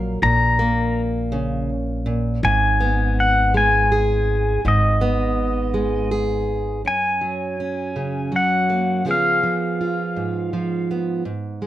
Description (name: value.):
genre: acoustic folk-pop ballad.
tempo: 54 BPM (dotted quarters).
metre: 6/8.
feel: straight.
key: F# major.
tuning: A4 = 440 Hz.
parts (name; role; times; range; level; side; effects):
fingerpicked plugged-in steel-string acoustic guitar; accompaniment; 0.0-11.7 s; F#2 to A#4; -22 LUFS; right 2 dB; none.
upright bass; bass; 0.0-6.8 s; G#1 to A#1; -22 LUFS; equal; none.
pedal steel guitar; melody; 0.2-10.9 s; D#5 to A#5; -20 LUFS; left 1 dB; plate reverb.
room: moderate studio reverb, RT60 0.5 s.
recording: none.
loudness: -18 LUFS.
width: side -13 dB against mid.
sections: 0.0-6.8 A section; 6.8-11.7 B section.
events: none.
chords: 0.0 F#/A# (rootless); 2.4 G#m; 6.8 F#; 9.1 C#7.